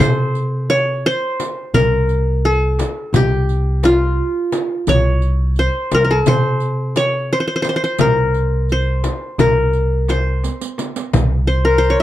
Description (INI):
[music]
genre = Turkish makam ensemble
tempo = 172 BPM (eighths)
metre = 9/8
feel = straight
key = C makam hicaz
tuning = A4 = 439 Hz
[part]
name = qanun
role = melody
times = 0.0-12.0 s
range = F4 to Db5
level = -17 LUFS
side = left 1 dB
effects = none
[part]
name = upright bass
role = bass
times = 0.0-11.9 s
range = C2 to C3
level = -18 LUFS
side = equal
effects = none
[part]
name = darbuka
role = percussion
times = 0.0-11.3 s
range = none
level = -23 LUFS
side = right 3 dB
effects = none
[part]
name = frame drum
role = percussion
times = 0.0-11.3 s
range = none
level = -22 LUFS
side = left 5 dB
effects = none
[part]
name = riq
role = percussion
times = 0.0-11.9 s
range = none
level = -30 LUFS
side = right 9 dB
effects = none
[sound]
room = light reverb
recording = dark, warm production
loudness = -14 LUFS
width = side -13 dB against mid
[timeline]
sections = 0.0-11.1 A section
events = drum fill 10.4-11.1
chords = none